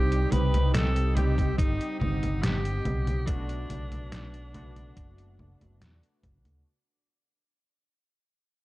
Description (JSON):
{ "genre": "vaporwave", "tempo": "71 BPM", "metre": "4/4", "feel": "straight", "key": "unclear", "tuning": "A4 = 440 Hz", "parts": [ { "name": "clear alto saxophone", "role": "melody", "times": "0.0-5.8 s", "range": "D4 to B4", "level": "-34 LUFS", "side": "equal", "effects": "none" }, { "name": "warbly lo-fi synth keys", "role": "accompaniment", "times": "0.0-6.7 s", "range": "G3 to G4", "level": "-36 LUFS", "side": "right 2 dB", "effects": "lush chorus" }, { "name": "warbly tape-like pad", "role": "sustained chords", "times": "0.2-6.6 s", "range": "C4 to Eb6", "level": "-43 LUFS", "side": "right 2 dB", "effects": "chorus, built-in reverb, vintage 12-bit sampler grit" }, { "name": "overdriven fingered electric bass", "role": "bass", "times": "0.0-6.6 s", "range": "F#1 to E2", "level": "-28 LUFS", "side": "equal", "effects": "none" }, { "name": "detuned 8-bit digital drum machine", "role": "drums", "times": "0.1-6.6 s", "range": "congas, hi-hat, snare drum", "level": "-31 LUFS", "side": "equal", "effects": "overdrive" }, { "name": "electronic kick drum", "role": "drums", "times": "1.4-6.4 s", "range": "none", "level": "-28 LUFS", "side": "equal", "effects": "overdrive" } ], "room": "little or no reverb", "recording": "cassette tape", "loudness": "-24 LUFS", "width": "side -18 dB against mid", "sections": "0.0-6.7 A section", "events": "fade-out 0.0-6.7", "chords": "0.0 Cm; 3.3 Bm7", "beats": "0.74 1.58 2.43 | 3.27 4.12 4.96 5.81" }